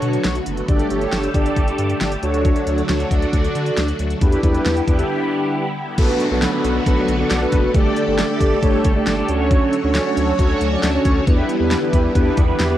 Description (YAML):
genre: synth-pop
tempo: 136 BPM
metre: 4/4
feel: straight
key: B minor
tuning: A4 = 439 Hz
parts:
  - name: mellow synth brass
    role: accompaniment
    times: 0.0-12.8 s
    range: A3 to D5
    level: -19 LUFS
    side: right 1 dB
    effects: chorus
  - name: phased string machine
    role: sustained chords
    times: 0.0-12.8 s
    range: D3 to C#5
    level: -24 LUFS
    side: left 1 dB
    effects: ensemble chorus, phaser
  - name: round analog bass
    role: bass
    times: 0.0-12.8 s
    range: F#1 to D3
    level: -23 LUFS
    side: equal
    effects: none
  - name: pop drum kit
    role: drums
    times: 0.0-12.7 s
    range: crash cymbal, handclaps, hi-hat, kick drum, snare drum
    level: -19 LUFS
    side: equal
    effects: cassette tape
  - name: downlifter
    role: sound effects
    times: 6.0-9.5 s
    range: none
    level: -32 LUFS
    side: left 1 dB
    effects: none
room: light reverb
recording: home recording on cassette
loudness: -16 LUFS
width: side -12 dB against mid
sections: 0.0-6.0 A section; 6.0-12.8 B section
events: break 5.1-6.0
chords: 0.0 Bm7; 0.7 Gsus2; 2.2 Dmaj7; 4.2 Em7; 6.0 Bm7; 7.7 Gsus2; 9.3 Dmaj7; 11.3 Em7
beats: 0.24 | 0.69 1.13 1.57 2.01 | 2.45 2.89 3.33 3.77 | 4.21 4.66 5.10 5.54 | 5.98 6.42 6.86 7.30 | 7.74 8.19 8.63 9.07 | 9.51 9.95 10.39 10.83 | 11.27 11.71 12.16 12.60